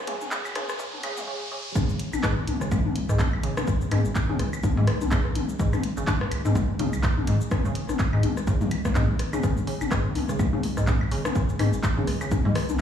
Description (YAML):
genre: minimal techno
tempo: 125 BPM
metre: 4/4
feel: swing 57% on 16ths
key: unclear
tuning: A4 = 440 Hz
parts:
  - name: riser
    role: sound effects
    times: 0.0-1.8 s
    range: none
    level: -36 LUFS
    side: right 2 dB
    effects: none
  - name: airy breathy pad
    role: texture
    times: 0.0-1.3 s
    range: F#4 to G#5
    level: -41 LUFS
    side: right 2 dB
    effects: chorus, sidechain pumping
  - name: resonant blip pluck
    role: riff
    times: 0.1-12.5 s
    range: G#2 to C#3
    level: -29 LUFS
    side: equal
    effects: chorus, sidechain pumping, digital delay
  - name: punchy analog drum machine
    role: drums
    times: 0.1-12.8 s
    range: cabasa, handclaps, hi-hat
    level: -34 LUFS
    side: equal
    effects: none
  - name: techno drum kit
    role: percussion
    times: 0.1-12.8 s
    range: claves, rim click, toms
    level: -28 LUFS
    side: left 4 dB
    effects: digital delay
  - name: electronic kick drum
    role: drums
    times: 0.3-12.4 s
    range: none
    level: -26 LUFS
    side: equal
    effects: high-pass filter on kick
  - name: round analog bass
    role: bass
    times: 1.8-12.8 s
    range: G#1 to C#2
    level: -29 LUFS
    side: right 1 dB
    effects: sidechain pumping
room: moderate small room reverb, RT60 0.5 s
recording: played on a big sound system in a bare room, large studio reverb, high-pass filter, studio ambience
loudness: -22 LUFS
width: side -9 dB against mid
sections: 0.0-1.8 A section; 1.8-12.8 B section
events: build-up 0.0-1.8; riser 0.0-1.8; filter sweep 0.0-1.8; drop 1.8-12.8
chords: 0.0 C#sus4; 1.8 C#5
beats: 0.32 0.80 1.27 | 1.75 2.23 2.71 3.19 | 3.67 4.16 4.63 5.12 | 5.59 6.08 6.55 7.04 | 7.51 8.00 8.47 8.96 | 9.44 9.91 10.39 10.88 | 11.36 11.84 12.31 12.79